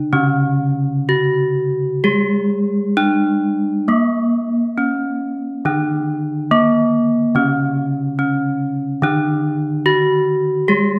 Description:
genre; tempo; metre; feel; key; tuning
gamelan; 61-72 BPM; 4/4; straight; C# pelog barang; A4 = 440 Hz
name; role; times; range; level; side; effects
gamelan-type bronze metallophone; melody; 0.0-11.0 s; A#3+20c to G#4-40c; -19 LUFS; equal; none
gamelan-type bronze metallophone; accompaniment; 0.0-11.0 s; C#3 to A#3+20c; -23 LUFS; equal; none
room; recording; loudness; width
wet recital hall reverb, RT60 1.4 s; none; -18 LUFS; mono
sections
0.0-7.4 A section; 7.4-11.0 B section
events
none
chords
none

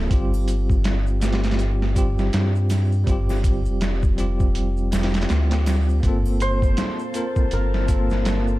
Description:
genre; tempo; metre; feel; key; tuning
trip hop; 81 BPM; 4/4; swing 60% on 16ths; unclear; A4 = 438 Hz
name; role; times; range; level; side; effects
bell-like tine electric piano; accompaniment; 0.0-8.6 s; G3 to Bb4; -27 LUFS; equal; fast stereo tremolo, tape echo
round analog bass; bass; 0.0-8.6 s; F1 to G2; -21 LUFS; equal; none
trip hop sampler-style drum kit; drums; 0.1-8.5 s; hi-hat, kick drum, snare drum; -23 LUFS; equal; none
maracas and triangle; percussion; 0.1-8.6 s; none; -45 LUFS; right 4 dB; none
string machine, cellos; sustained chords; 6.0-8.6 s; Bb3 to C6; -32 LUFS; equal; ensemble chorus
santur; melody; 6.4-8.6 s; Bb4 to C5; -28 LUFS; left 1 dB; tape echo
room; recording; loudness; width
digital ambience; dark, warm production; -18 LUFS; side -17 dB against mid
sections
0.0-8.6 A section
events
none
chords
0.1 Fsus2/G; 6.0 Gm11

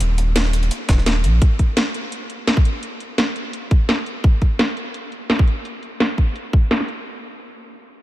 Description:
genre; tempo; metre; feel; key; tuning
liquid drum and bass; 170 BPM; 4/4; swing 53% on 16ths; unclear; A4 = 440 Hz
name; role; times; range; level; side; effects
saturated sub bass; bass; 0.0-1.4 s; D#1 to A#1; -17 LUFS; equal; none
drum and bass drum kit; drums; 0.0-7.0 s; hi-hat, snare drum; -22 LUFS; equal; low-pass filter on hats, low-pass filter on snare, low-pass filter on room
jungle sampler-style drum kit; drums; 0.0-1.3 s; hi-hat, snare drum; -30 LUFS; equal; high-pass filter on hats, high-pass filter on snare
electronic kick drum; drums; 0.9-6.6 s; none; -14 LUFS; equal; none
room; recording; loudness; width
light reverb; none; -16 LUFS; side -15 dB against mid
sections
0.0-7.1 A section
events
none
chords
none

